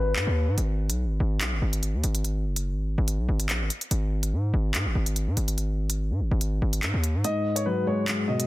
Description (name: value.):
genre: hip hop, drill.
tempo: 144 BPM.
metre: 4/4.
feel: half-time.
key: G# minor.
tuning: A4 = 443 Hz.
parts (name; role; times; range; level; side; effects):
dark baby grand piano; melody; 0.0-0.5, 7.2-8.5 s; B4 to D#5; -30 LUFS; left 2 dB; low-pass filter, ping-pong delay.
distorted 808-style bass; bass; 0.0-7.2 s; F#1 to G#2; -25 LUFS; equal; distortion.
drill drum kit; drums; 0.2-8.5 s; handclaps, hi-hat; -30 LUFS; equal; none.
felt-muted upright piano; accompaniment; 7.2-8.5 s; G#2 to G#3; -26 LUFS; left 2 dB; low-pass filter.
room: small room ambience.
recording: dense, heavily limited modern master.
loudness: -24 LUFS.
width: side -17 dB against mid.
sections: 0.0-8.5 A section.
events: break 0.0-0.6, 0.6-7.2; filter sweep 0.0-7.2; kick muted 7.2-8.5.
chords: 0.0 G#m; 0.6 N.C.; 3.9 G#5; 7.2 G#m7.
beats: 0.16 | 0.58 0.99 1.41 1.83 | 2.24 2.66 3.08 3.49 | 3.91 4.33 4.74 5.16 | 5.58 5.99 6.41 6.83 | 7.24 7.66 8.08.